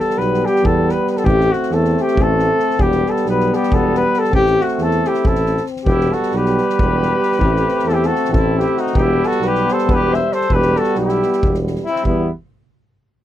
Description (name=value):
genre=balkan folk, Balkan brass band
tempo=272 BPM (eighths)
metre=7/8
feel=straight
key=E minor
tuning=A4 = 440 Hz
part: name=mellow flugelhorn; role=melody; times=0.0-12.3 s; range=E4 to E5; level=-18 LUFS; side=left 2 dB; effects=none
part: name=clear euphonium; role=accompaniment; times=0.0-12.3 s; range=B3 to C4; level=-24 LUFS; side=left 6 dB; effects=none
part: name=mellow trombone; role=accompaniment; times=0.0-12.3 s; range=G3 to A3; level=-22 LUFS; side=right 6 dB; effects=none
part: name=soft-mallet drum kit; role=percussion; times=0.0-12.3 s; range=kick drum, snare drum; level=-21 LUFS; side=equal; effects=none
part: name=mellow tuba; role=bass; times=0.2-12.3 s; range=E1 to E2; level=-20 LUFS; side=equal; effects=none
part: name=mellow trumpet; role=second line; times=5.1-12.3 s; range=B3 to C5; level=-24 LUFS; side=right 2 dB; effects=none
room=light reverb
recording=dry, close 1970s-style studio recording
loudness=-14 LUFS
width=side -12 dB against mid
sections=0.0-12.1 A section; 12.1-13.2 B section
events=none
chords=0.0 Em; 1.3 Am; 2.8 Em; 4.3 Am; 5.9 Em; 7.4 Am; 9.0 Em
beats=0.16 0.38 0.60 0.82 1.04 | 1.26 1.48 1.70 1.92 2.13 2.35 2.57 | 2.79 3.01 3.23 3.45 3.67 3.89 4.11 | 4.33 4.55 4.77 4.99 5.21 5.43 5.65 | 5.87 6.09 6.31 6.53 6.75 6.97 7.19 | 7.41 7.63 7.85 8.07 8.29 8.52 8.74 | 8.96 9.18 9.40 9.62 9.84 10.06 10.28 | 10.51 10.73 10.95 11.17 11.39 11.61 11.83 | 12.05 12.27